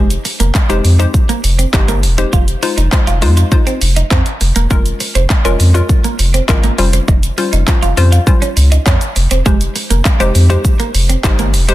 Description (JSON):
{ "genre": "dance-pop", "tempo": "101 BPM", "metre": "4/4", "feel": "straight", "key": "unclear", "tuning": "A4 = 440 Hz", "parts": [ { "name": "hollow square pluck", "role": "accompaniment", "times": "0.0-11.7 s", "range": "G3 to C5", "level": "-19 LUFS", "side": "left 4 dB", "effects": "chorus, sidechain pumping" }, { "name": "twelve-string electric guitar", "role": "riff", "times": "0.0-11.7 s", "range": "Ab3 to F4", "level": "-21 LUFS", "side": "right 5 dB", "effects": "wide subtle chorus" }, { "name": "warm sub bass", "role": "bass", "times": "0.0-11.7 s", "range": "E1 to F2", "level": "-12 LUFS", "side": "equal", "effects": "sidechain pumping" }, { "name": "pop drum kit", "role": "drums", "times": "0.1-11.7 s", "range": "handclaps, hi-hat, kick drum, shaker", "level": "-14 LUFS", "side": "equal", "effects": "none" } ], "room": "little or no reverb", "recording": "dense, heavily limited modern master", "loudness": "-10 LUFS", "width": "side -15 dB against mid", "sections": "0.0-11.7 A section", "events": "none", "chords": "0.0 Abmaj7/F; 2.3 Fm7; 4.7 Bbm7/F; 6.8 Eb13/F; 9.5 Abmaj7/F" }